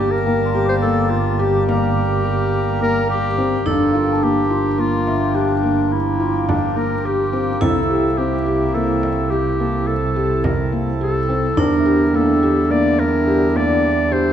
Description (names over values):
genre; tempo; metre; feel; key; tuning
contemporary instrumental, chamber music in an uneven meter; 106 BPM; 7/4; straight; G dorian from 3.7 s; A4 = 440 Hz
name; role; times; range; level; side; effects
warm clarinet; melody; 0.0-14.3 s; D4 to D5; -22 LUFS; left 1 dB; none
vibraphone with medium hard mallets; second line; 0.0-14.3 s; Bb3 to E4; -22 LUFS; right 2 dB; none
hand-pumped harmonium; sustained chords; 0.0-14.3 s; C3 to A5; -25 LUFS; left 2 dB; none
felt-muted upright piano; arpeggios; 0.0-14.3 s; Bb3 to G4; -23 LUFS; left 4 dB; none
warm double bass; bass; 0.0-14.3 s; G1 to E2; -22 LUFS; right 4 dB; none
worn celesta; texture; 0.3-14.3 s; C5 to D6; -30 LUFS; left 8 dB; none
frame drum; percussion; 0.8-13.3 s; none; -26 LUFS; right 2 dB; none
room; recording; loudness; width
moderate scoring stage reverb, RT60 1.8 s; none; -15 LUFS; side -9 dB against mid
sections
0.0-3.7 A section; 3.7-14.3 B section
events
none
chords
0.0 Bbmaj7/G; 3.7 Gm7; 7.6 C7; 11.6 Em7b5